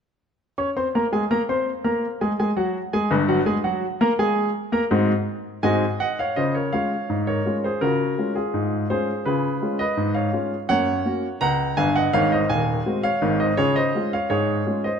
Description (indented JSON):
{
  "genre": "ragtime piano",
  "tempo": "83 BPM",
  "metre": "2/4",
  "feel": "straight",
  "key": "Db major",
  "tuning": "A4 = 440 Hz",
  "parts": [
    { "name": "clear baby grand piano", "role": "solo", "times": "0.6-15.0 s", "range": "Eb1 to Db6", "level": "-20 LUFS", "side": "equal", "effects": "none" }
  ],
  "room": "moderate scoring stage reverb, RT60 1.6 s",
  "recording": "close, detailed microphones",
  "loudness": "-20 LUFS",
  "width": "side -7 dB against mid",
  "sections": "0.6-6.4 A section; 6.4-15.0 B section",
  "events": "none",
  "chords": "0.6 N.C.; 3.5 Ab7; 9.3 Db7; 10.7 Gb; 12.1 Ab7; 13.6 Db"
}